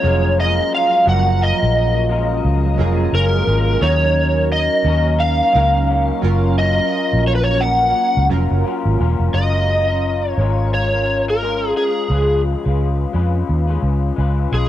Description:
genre	indie pop, bedroom pop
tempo	87 BPM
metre	4/4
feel	swing 60% on 16ths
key	F# major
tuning	A4 = 440 Hz
part	overdriven slide guitar	melody	0.0-14.7 s	G#4 to F#5	-18 LUFS	equal	ensemble chorus, analog delay
part	chorused retro synth keys	accompaniment	0.0-9.4 s	E#3 to A#4	-24 LUFS	right 10 dB	tremolo, cassette tape
part	electric guitar through a small old amp	accompaniment	0.0-14.7 s	C#3 to B4	-24 LUFS	left 8 dB	analog chorus, warbly pitch drift, cassette tape
part	vintage muted fingered electric bass	bass	0.0-14.7 s	E1 to E#2	-17 LUFS	equal	none
room	moderate booth ambience, RT60 0.3 s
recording	home recording on cassette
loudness	-14 LUFS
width	side -12 dB against mid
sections	0.0-9.3 A section; 9.3-14.7 B section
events	none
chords	0.0 F#maj9; 3.8 D#m7; 6.2 F#maj7; 9.3 F#maj9; 12.1 C#7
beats	0.38 | 1.07 1.76 2.45 3.14 | 3.83 4.51 5.20 5.89 | 6.58 7.27 7.96 8.65 | 9.34 10.03 10.72 11.41 | 12.10 12.79 13.48 14.17

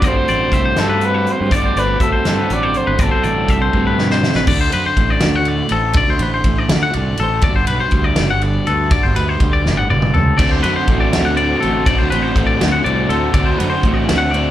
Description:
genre	math rock and midwest emo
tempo	81 BPM (dotted quarters)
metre	6/8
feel	straight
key	unclear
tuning	A4 = 440 Hz
part	warm trumpet	melody	0.0-4.0 s	A4 to D5	-20 LUFS	right 1 dB	slapback echo
part	twelve-string electric guitar	accompaniment	0.0-14.5 s	G2 to C5	-24 LUFS	right 5 dB	none
part	twangy electric guitar	arpeggios	0.0-14.5 s	A4 to F#5	-20 LUFS	left 4 dB	slapback echo
part	crunchy overdriven guitar	riff	0.0-4.5, 10.4-14.5 s	D3 to F#4	-21 LUFS	equal	slapback echo
part	fuzz fingered electric bass	bass	0.0-14.5 s	F#1 to G2	-19 LUFS	equal	overdrive
part	loose indie drum kit	drums	0.0-14.4 s	crash cymbal, hi-hat, kick drum, ride cymbal, snare drum, toms	-18 LUFS	equal	none
room	small room ambience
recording	live gig heard through the venue's PA, club reverb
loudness	-13 LUFS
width	side -12 dB against mid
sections	0.0-4.5 A section; 4.5-14.5 B section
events	drum fill 3.7-4.5, 9.7-10.4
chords	0.0 D7/G; 4.5 D7; 7.4 Gmaj7; 10.4 D7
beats	| 0.03 0.77 | 1.51 2.25 | 3.00 3.74 | 4.48 5.22 | 5.96 6.70 | 7.44 8.18 | 8.92 9.65 | 10.39 11.13 | 11.87 12.61 | 13.35 14.09

